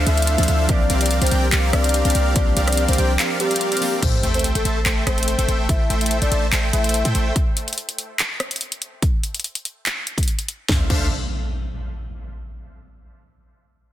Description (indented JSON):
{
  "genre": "future bass",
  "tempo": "144 BPM",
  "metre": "4/4",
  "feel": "half-time",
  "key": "D minor",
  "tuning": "A4 = 440 Hz",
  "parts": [
    { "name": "glassy digital keys", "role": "accompaniment", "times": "0.0-4.0 s", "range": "F3 to A4", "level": "-28 LUFS", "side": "right 3 dB", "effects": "chorus, phaser, sidechain pumping" },
    { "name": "airy dreamy lead", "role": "arpeggios", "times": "0.0-4.0 s", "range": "F5 to G5", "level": "-31 LUFS", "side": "left 1 dB", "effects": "chorus, sidechain pumping" },
    { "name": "supersaw chords", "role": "riff", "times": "0.0-7.3, 10.7-11.1 s", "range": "A3 to A5", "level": "-25 LUFS", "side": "right 1 dB", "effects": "sidechain pumping, dub echo" },
    { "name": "warm 808-style bass", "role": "bass", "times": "0.0-7.3, 10.7-11.1 s", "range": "A1 to A2", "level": "-20 LUFS", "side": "equal", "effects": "sidechain pumping" },
    { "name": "soft octave-layered synth lead", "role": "melody", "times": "0.1-7.3 s", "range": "G4 to E5", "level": "-26 LUFS", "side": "left 3 dB", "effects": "chorus, tremolo, sidechain pumping, tape echo" },
    { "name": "trap drum kit", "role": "drums", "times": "0.1-11.0 s", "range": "crash cymbal, handclaps, hi-hat, rim click, snare drum", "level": "-23 LUFS", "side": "left 1 dB", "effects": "none" },
    { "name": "electronic kick drum", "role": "drums", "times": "0.7-11.0 s", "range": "none", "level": "-20 LUFS", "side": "equal", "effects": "none" },
    { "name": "sub drop and impact", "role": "sound effects", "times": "4.0-5.7, 10.7-12.4 s", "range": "none", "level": "-28 LUFS", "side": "equal", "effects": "none" }
  ],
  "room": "digital ambience",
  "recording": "dense, heavily limited modern master",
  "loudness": "-18 LUFS",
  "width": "side -12 dB against mid",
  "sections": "0.0-4.0 A section; 4.0-10.7 B section; 10.7-12.4 C section",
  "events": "drop 0.0-4.0; break 3.2-4.0; impact 4.0-5.7",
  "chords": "0.0 Dm9; 0.7 C9sus4; 4.0 Am7; 7.4 N.C.; 10.7 Dm9"
}